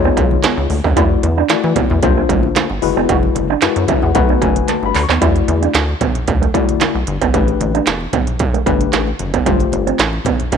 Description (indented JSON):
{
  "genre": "early-eighties boogie funk",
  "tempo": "113 BPM",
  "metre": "4/4",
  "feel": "straight",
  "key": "E minor from 5.2 s",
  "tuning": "A4 = 440 Hz",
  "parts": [
    { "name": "tine electric piano", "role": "accompaniment", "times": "0.0-10.0 s", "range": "G#3 to C#6", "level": "-18 LUFS", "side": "left 15 dB", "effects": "overdrive, fast stereo tremolo" },
    { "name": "electric guitar with an envelope filter", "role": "riff", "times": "0.0-10.6 s", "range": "G3 to F#4", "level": "-21 LUFS", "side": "right 13 dB", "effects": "wide subtle chorus" },
    { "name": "rubbery square bass", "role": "bass", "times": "0.0-10.6 s", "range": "E1 to E3", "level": "-18 LUFS", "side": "equal", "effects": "none" },
    { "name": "congas", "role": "percussion", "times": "0.0-10.6 s", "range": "none", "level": "-27 LUFS", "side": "left 8 dB", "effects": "none" },
    { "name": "industrial drum kit", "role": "drums", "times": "0.2-10.6 s", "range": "handclaps, hi-hat, kick drum, snare drum", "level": "-17 LUFS", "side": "right 3 dB", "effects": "distortion" }
  ],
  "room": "light reverb",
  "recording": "1960s-style stereo with parts hard left and right",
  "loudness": "-13 LUFS",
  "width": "side -7 dB against mid",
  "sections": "0.0-5.2 A section; 5.2-10.6 B section",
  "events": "tine electric piano fill 3.6-5.2; drum fill 4.7-5.2",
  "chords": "0.0 D#9sus4; 1.0 E9sus4; 2.0 C9sus4; 2.8 F#9sus4; 4.2 B7; 5.2 E9sus4; 7.3 A9sus4; 9.5 G9sus4"
}